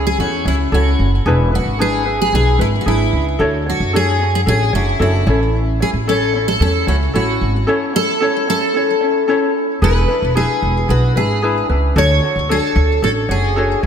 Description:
acoustic pop; 112 BPM; 4/4; straight; A major; A4 = 440 Hz
picked steel-string acoustic guitar; melody; 0.0-13.8 s; E4 to C#5; -18 LUFS; equal; analog chorus, ping-pong delay
ukulele; accompaniment; 0.0-13.9 s; C#4 to C#5; -19 LUFS; left 2 dB
upright bass; bass; 0.0-13.9 s; E1 to F#2; -17 LUFS; right 1 dB
moderate lush hall reverb, RT60 2.7 s; dreamy mix soaked in reverb; -13 LUFS; side -8 dB against mid
0.0-9.8 A section; 9.8-13.9 B section
0.0 A; 1.3 E7; 3.4 Dmaj7; 5.3 A; 9.8 E7; 12.0 Dmaj7

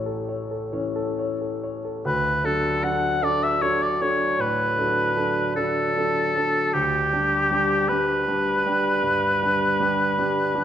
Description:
classical, romantic duo for oboe and grand piano; 52 BPM (dotted quarters); 12/8; rubato; D major; A4 = 439 Hz
warm grand piano; accompaniment; 0.0-10.6 s; A1 to C#5; -25 LUFS; equal
clear oboe; melody; 2.1-10.6 s; G4 to F#5; -21 LUFS; left 1 dB
moderate scoring stage reverb, RT60 1.9 s; minimal, uncompressed stereo recording; -20 LUFS; side -10 dB against mid
0.0-2.1 A section; 2.1-10.6 B section
0.0 A; 2.1 D; 6.7 G/D

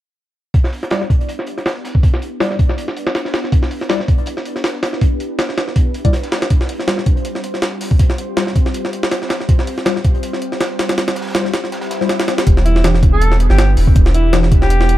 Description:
drum and bass, jungle; 161 BPM; 4/4; swing 55% on 16ths; E phrygian; A4 = 441 Hz
ethereal airy pad; sustained chords; 0.7-15.0 s; G3 to C5; -25 LUFS; equal; ensemble chorus, built-in reverb
crunchy breakbeat drum kit; drums; 0.5-12.5 s; hi-hat, snare drum; -33 LUFS; right 2 dB; high-pass filter on hats, high-pass filter on snare, high-pass filter on room
jungle sampler-style drum kit; drums; 0.5-15.0 s; hi-hat, kick drum, snare drum; -15 LUFS; equal; low-pass filter on hats, low-pass filter on kick, low-pass filter on snare
mellow tine electric piano; stabs; 0.9-14.5 s; E3 to D5; -24 LUFS; left 3 dB; medium stereo tremolo, low-pass filter, dub echo
swell; sound effects; 11.8-12.5 s; -29 LUFS; equal
soft dub sub bass; bass; 12.5-15.0 s; E1 to G1; -13 LUFS; equal
clear alto saxophone; melody; 12.7-15.0 s; E4 to A4; -20 LUFS; equal; dub echo
small room ambience; -14 LUFS; side -14 dB against mid
0.5-12.5 A section; 12.5-15.0 B section
filter sweep on drum 0.5-12.5; filter sweep on ambient pad 0.5-12.5; kick drops out 11.7-12.5; swell 11.8-12.5; drop 12.5-15.0
0.5 Em7; 6.5 Fsus2; 12.5 Em7

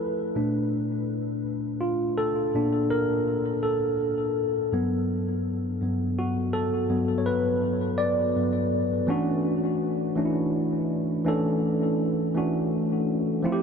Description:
R&B; 55 BPM (dotted quarters); 6/8; straight; D major; A4 = 439 Hz
tine electric piano; solo; 0.0-13.6 s; G2 to D5; -23 LUFS; equal; lush chorus, ping-pong delay
moderate huge ambient reverb, RT60 8.5 s; dreamy mix soaked in reverb; -23 LUFS; side -6 dB against mid
0.0-9.1 A section; 9.1-13.6 B section
tine electric piano solo 0.0-9.1
0.4 Bbmaj7; 4.7 Gmaj9; 9.1 Dmaj9

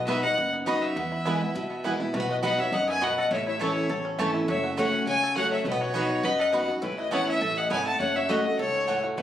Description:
bluegrass; 205 BPM; 4/4; straight; A4 = 440 Hz
bluegrass banjo; melody; 0.0-9.2 s; A3 to A4; -33 LUFS; right 2 dB
clear fiddle; melody; 0.0-9.2 s; B4 to A5; -28 LUFS; left 1 dB
lap resonator guitar; second line; 0.0-9.2 s; E4 to F#5; -31 LUFS; left 4 dB
picked steel-string acoustic guitar; accompaniment; 0.0-9.2 s; E2 to F#4; -29 LUFS; equal
upright bass; bass; 0.0-9.2 s; F#1 to F#2; -38 LUFS; right 1 dB
mandolin; stabs; 0.1-9.0 s; A3 to B5; -31 LUFS; right 4 dB
moderate studio reverb, RT60 0.5 s; recorded on a phone in the room, club reverb; -24 LUFS; side -11 dB against mid
0.0-2.1 A section; 2.1-9.2 B section
0.0 B; 1.0 E; 2.1 B; 3.3 A; 4.5 F#m; 5.7 B; 6.8 Aadd9; 8.0 F#m

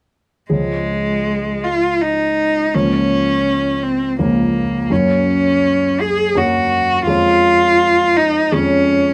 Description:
classical, romantic duo for cello and grand piano; 82 BPM; 3/4; rubato; Db major; A4 = 440 Hz
rich cello; melody; 0.5-9.1 s; Ab3 to Ab4; -17 LUFS; equal
warm grand piano; accompaniment; 0.5-9.1 s; Db2 to Db4; -21 LUFS; equal
moderate studio reverb, RT60 0.6 s; -16 LUFS; mono
0.5-9.1 A section
0.5 Db; 2.7 Bbm/Db; 4.9 Gb; 7.1 Db/F

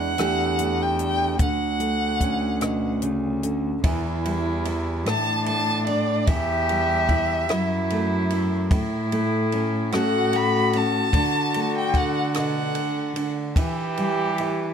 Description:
acoustic folk-pop ballad; 49 BPM (dotted quarters); 6/8; straight; E dorian; A4 = 440 Hz
rich violin; melody; 0.0-13.2 s; D5 to B5; -26 LUFS; left 1 dB
fingerpicked steel-string acoustic guitar; accompaniment; 0.0-14.7 s; A2 to A4; -27 LUFS; right 1 dB
rich cello; bass; 0.0-14.7 s; D2 to E3; -27 LUFS; equal
compact cocktail drum kit; drums; 0.2-14.6 s; hi-hat, kick drum, ride cymbal, rim click; -27 LUFS; equal
warm cello; second line; 3.8-14.7 s; D4 to G4; -27 LUFS; right 2 dB
little or no reverb; close, detailed microphones; -21 LUFS; side -7 dB against mid
0.0-3.8 A section; 3.8-14.7 B section
0.2 A7sus4/E; 1.4 Dmaj7; 3.8 Em; 5.1 Asus4; 6.3 Em; 7.5 F#m7; 8.7 A; 9.9 F#m/A; 11.1 D; 13.6 Em

